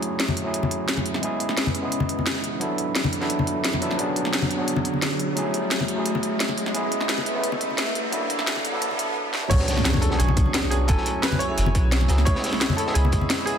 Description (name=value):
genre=liquid drum and bass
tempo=174 BPM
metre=4/4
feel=straight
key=B dorian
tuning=A4 = 438 Hz
part: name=overdriven tine electric piano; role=accompaniment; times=0.0-13.6 s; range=F#3 to G#5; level=-27 LUFS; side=right 1 dB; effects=tape echo
part: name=warm analog pad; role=sustained chords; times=0.0-13.6 s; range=D3 to E6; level=-32 LUFS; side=equal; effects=chorus
part: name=drum and bass drum kit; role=drums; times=0.0-13.5 s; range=crash cymbal, hi-hat, snare drum, toms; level=-26 LUFS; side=equal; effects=high-pass filter on hats, high-pass filter on snare, high-pass filter on toms, high-pass filter on cymbals, high-pass filter on room
part: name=riser and impact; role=sound effects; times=1.3-10.9 s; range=none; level=-30 LUFS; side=equal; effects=none
part: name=congas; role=percussion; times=0.3-13.3 s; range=none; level=-29 LUFS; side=left 3 dB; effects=none
part: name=bright grand piano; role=melody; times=9.5-13.6 s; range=G#4 to C#5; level=-29 LUFS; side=right 1 dB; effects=vintage 12-bit sampler grit, dub echo
part: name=warm sub bass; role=bass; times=9.5-13.2 s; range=F#1 to C#2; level=-21 LUFS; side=equal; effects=none
part: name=crunchy breakbeat drum kit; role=drums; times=9.5-13.6 s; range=hi-hat, snare drum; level=-32 LUFS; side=equal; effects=high-pass filter on hats, high-pass filter on snare, high-pass filter on room
part: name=electronic kick drum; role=drums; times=9.5-13.2 s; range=none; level=-22 LUFS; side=equal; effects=none
room=moderate plate reverb, RT60 2.3 s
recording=dense, heavily limited modern master, high-pass filter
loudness=-21 LUFS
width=side -8 dB against mid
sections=0.0-9.5 A section; 9.5-13.6 B section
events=build-up 0.0-9.5; filter sweep on analog synth pad 0.0-9.5; riser 1.3-9.2; drum fill 9.3; drop 9.5-13.6; impact 9.5-10.9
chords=0.0 F#m9; 1.2 C#m7; 2.6 E7sus4; 4.0 Bm69; 5.4 F#m9; 6.7 C#m7; 8.1 E7sus4; 9.5 Bm69; 10.9 F#m9; 12.3 C#m7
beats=0.20 0.54 0.89 | 1.23 1.58 1.92 2.27 | 2.61 2.96 3.30 3.65 | 3.99 4.34 4.68 5.03 | 5.37 5.71 6.06 6.41 | 6.75 7.09 7.44 7.78 | 8.13 8.47 8.82 9.16 | 9.51 9.85 10.20 10.54 | 10.89 11.23 11.58 11.92 | 12.27 12.61 12.96 13.30